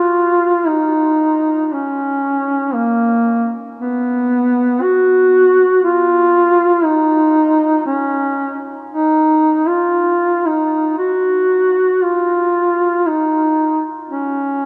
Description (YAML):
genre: caucasian folk, Caucasian lament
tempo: 58 BPM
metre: 3/4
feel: rubato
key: unclear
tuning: A4 = 440 Hz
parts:
  - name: mellow duduk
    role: solo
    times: 0.0-14.7 s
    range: Bb3 to Gb4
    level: -15 LUFS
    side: equal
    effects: none
room: wet cathedral reverb, RT60 5.8 s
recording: none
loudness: -15 LUFS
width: mono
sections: 0.0-14.7 A section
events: none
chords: none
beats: 0.69 1.74 | 2.77 3.82 4.86 | 5.87 6.88 7.91 | 8.94 9.97 11.03 | 12.08 13.12 14.14